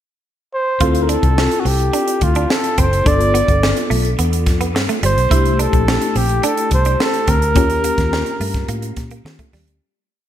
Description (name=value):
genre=polished 1980s jazz-funk pop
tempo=107 BPM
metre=4/4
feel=straight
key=D minor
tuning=A4 = 440 Hz
part: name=breathy flugelhorn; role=melody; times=0.5-9.3 s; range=F4 to D5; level=-19 LUFS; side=right 1 dB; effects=ping-pong delay
part: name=tine electric piano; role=accompaniment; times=0.8-9.8 s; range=A3 to A4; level=-22 LUFS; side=left 3 dB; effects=medium stereo tremolo, ensemble chorus
part: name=semi-hollow electric guitar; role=riff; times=0.8-9.6 s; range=G3 to F4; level=-25 LUFS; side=right 5 dB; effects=analog chorus
part: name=vintage muted fingered electric bass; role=bass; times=0.8-9.8 s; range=F#1 to Eb3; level=-19 LUFS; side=equal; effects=none
part: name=crisp fusion drum kit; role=drums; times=0.8-9.8 s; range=hi-hat, kick drum, snare drum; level=-19 LUFS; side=equal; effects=gated reverb
room=moderate lush hall reverb, RT60 1.6 s, studio reverb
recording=bright 1980s-style digital production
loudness=-14 LUFS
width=side -11 dB against mid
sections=0.0-0.8 pickup bar; 0.8-9.8 verse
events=fade-out 7.6-9.8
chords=0.0 N.C.; 0.8 Dm7; 3.1 G7; 5.3 C69; 7.6 Eb9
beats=0.25 | 0.81 1.37 1.94 2.50 | 3.06 3.62 4.19 4.75 | 5.31 5.87 6.43 7.00 | 7.56 8.12 8.69 9.25